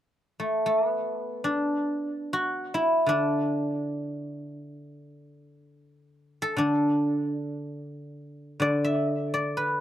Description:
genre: chinese traditional, Chinese solo plucked strings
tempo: free time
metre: none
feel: none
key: D gong mode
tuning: A4 = 439 Hz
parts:
  - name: guzheng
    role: solo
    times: 0.4-9.8 s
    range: D3 to E5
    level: -25 LUFS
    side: equal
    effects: slapback echo
room: light reverb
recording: recorded outdoors, with no room sound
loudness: -24 LUFS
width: side -11 dB against mid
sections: 0.0-8.6 A section; 8.6-9.8 B section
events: none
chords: none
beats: free time

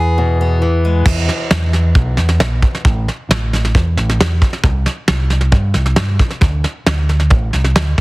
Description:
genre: indie folk with a building arrangement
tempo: 134 BPM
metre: 4/4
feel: straight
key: unclear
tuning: A4 = 442 Hz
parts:
  - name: fingerpicked steel-string acoustic guitar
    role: accompaniment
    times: 0.0-2.9 s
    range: E2 to G#4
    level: -20 LUFS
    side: left 2 dB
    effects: none
  - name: fingered electric bass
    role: bass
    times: 0.0-8.0 s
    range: A1 to G2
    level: -15 LUFS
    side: equal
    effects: none
  - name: soft brush drum kit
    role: drums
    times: 1.1-8.0 s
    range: crash cymbal, kick drum, snare drum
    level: -15 LUFS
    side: equal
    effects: none
room: little or no reverb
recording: heavily compressed radio sound, multiband compression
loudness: -12 LUFS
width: side -21 dB against mid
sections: 0.0-1.1 A section; 1.1-8.0 B section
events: none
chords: 0.0 E; 1.1 E5; 2.9 A5; 4.6 C5; 6.4 D5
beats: 0.17 0.62 | 1.06 1.51 1.96 2.40 | 2.85 3.30 3.74 4.19 | 4.63 5.08 5.53 5.97 | 6.42 6.87 7.31 7.76

